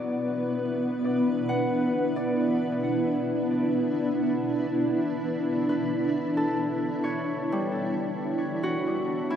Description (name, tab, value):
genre	ambient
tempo	67 BPM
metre	3/4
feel	straight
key	unclear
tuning	A4 = 440 Hz
part	granular cloud pad	sustained chords	0.0-9.4 s	A3 to B4	-25 LUFS	equal	built-in reverb
part	Celtic harp	arpeggios	0.0-9.4 s	G3 to F#5	-33 LUFS	left 2 dB	tape echo
room	wet huge ambient reverb, RT60 7.4 s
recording	dreamy mix soaked in reverb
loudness	-24 LUFS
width	side -9 dB against mid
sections	0.0-9.4 A section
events	none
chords	0.0 Dmaj9